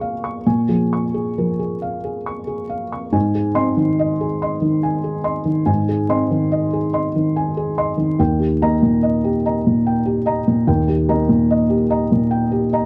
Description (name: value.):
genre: neoclassical minimalist piano.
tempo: 66-74 BPM.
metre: 3/4.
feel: rubato.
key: unclear.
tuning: A4 = 439 Hz.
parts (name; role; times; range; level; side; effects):
felt-muted upright piano; solo; 0.0-12.9 s; Eb2 to Db6; -19 LUFS; equal; none.
room: moderate booth ambience, RT60 0.2 s.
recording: dry, close 1970s-style studio recording, vinyl crackle.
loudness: -19 LUFS.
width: mono.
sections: 0.0-3.1 A section; 3.1-12.9 B section.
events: none.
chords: 0.0 Bbm7; 3.1 Ab; 8.2 Eb.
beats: | 0.45 1.36 2.26 | 3.15 4.01 4.85 | 5.68 6.52 7.36 | 8.19 9.02 9.86 | 10.68 11.49 12.31.